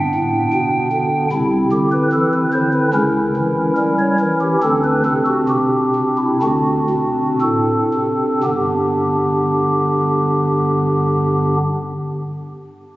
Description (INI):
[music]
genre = classical, chorale-style piece for pipe organ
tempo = 56-77 BPM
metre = 4/4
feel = straight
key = G major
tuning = A4 = 440 Hz
[part]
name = pipe organ, stopped flute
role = solo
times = 0.0-11.6 s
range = G1 to G5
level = -15 LUFS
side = equal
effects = none
[sound]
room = wet church reverb, RT60 2.8 s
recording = recorded on a phone in the room, club reverb, compression, nothing above 7.8 kHz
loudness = -15 LUFS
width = side -17 dB against mid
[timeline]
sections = 0.0-8.5 A section; 8.5-12.7 B section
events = slowing down 0.0-8.5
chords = 0.0 G; 1.3 C; 2.9 C#dim7; 4.6 D7(no3); 6.4 D7; 8.5 G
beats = 0.52 | 1.30 2.09 2.90 3.74 | 4.60 5.49 6.42 7.41 | 8.46 9.51 10.58